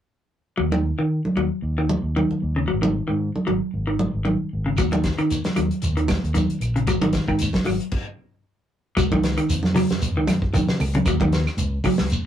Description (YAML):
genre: afrobeat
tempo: 115 BPM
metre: 4/4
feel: swing 55% on 16ths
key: Eb minor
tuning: A4 = 440 Hz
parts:
  - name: clean electric guitar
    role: arpeggios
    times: 0.6-12.1 s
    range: Db3 to Gb3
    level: -24 LUFS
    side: left 1 dB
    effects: none
  - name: fingered electric bass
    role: bass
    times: 0.6-12.1 s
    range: Ab1 to Eb3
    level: -25 LUFS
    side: equal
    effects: none
  - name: congas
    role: percussion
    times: 0.7-12.0 s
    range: none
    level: -24 LUFS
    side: right 1 dB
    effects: none
  - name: warm soul drum kit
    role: drums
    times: 4.8-12.2 s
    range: crash cymbal, hi-hat, kick drum, snare drum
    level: -26 LUFS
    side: equal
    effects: none
  - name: claves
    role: percussion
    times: 4.8-12.0 s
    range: none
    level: -34 LUFS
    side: right 7 dB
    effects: none
  - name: shekere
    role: percussion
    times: 4.8-12.3 s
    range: none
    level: -28 LUFS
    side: right 1 dB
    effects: none
room: wet booth ambience, RT60 0.3 s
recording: rough rehearsal-room recording, warm saturation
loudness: -20 LUFS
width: side -10 dB against mid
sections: 0.6-9.0 A section; 9.0-12.3 B section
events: stop 7.9-9.0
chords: 0.6 Ebm; 2.7 Ab5; 4.8 Ebm; 6.9 Ab5; 9.0 Dbsus4; 11.1 Ebm7